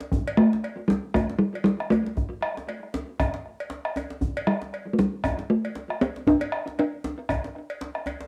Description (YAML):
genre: west african traditional, West African drum ensemble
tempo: 117 BPM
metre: 4/4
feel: swing 56% on 16ths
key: G major pentatonic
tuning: A4 = 441 Hz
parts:
  - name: djembe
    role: percussion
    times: 0.0-8.3 s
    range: none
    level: -36 LUFS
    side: equal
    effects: none
  - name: bombo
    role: percussion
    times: 0.1-8.1 s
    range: none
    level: -32 LUFS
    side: equal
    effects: none
  - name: cowbell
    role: percussion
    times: 0.3-8.2 s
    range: none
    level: -38 LUFS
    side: equal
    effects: none
  - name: talking drum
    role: melody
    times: 0.4-7.3 s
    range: G3 to D4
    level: -25 LUFS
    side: equal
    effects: cassette tape, tape echo
room: wet studio reverb, RT60 0.7 s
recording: home recording on cassette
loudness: -26 LUFS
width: mono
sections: 0.0-8.3 A section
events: none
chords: none